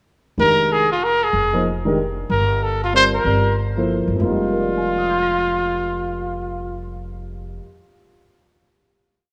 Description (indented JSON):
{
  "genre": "jazz",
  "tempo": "188 BPM",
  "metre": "3/4",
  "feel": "swing 61% on 8ths",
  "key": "F dorian",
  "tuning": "A4 = 445 Hz",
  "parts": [
    { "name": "clear trumpet", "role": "melody", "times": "0.4-6.9 s", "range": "F4 to C5", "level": "-21 LUFS", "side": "equal", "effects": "none" },
    { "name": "dark concert grand piano", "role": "accompaniment", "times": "0.4-7.9 s", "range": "F2 to Bb6", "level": "-26 LUFS", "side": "equal", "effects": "none" },
    { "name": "upright bass", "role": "bass", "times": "0.4-7.6 s", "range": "F1 to G1", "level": "-28 LUFS", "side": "equal", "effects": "none" }
  ],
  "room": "moderate plate reverb, RT60 3.3 s",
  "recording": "rough home demo mix, studio reverb",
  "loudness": "-19 LUFS",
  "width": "mono",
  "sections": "0.4-4.2 A section; 4.2-6.1 final chord",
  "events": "none",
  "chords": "0.4 Fm11; 2.3 Gm11; 4.2 Fm11"
}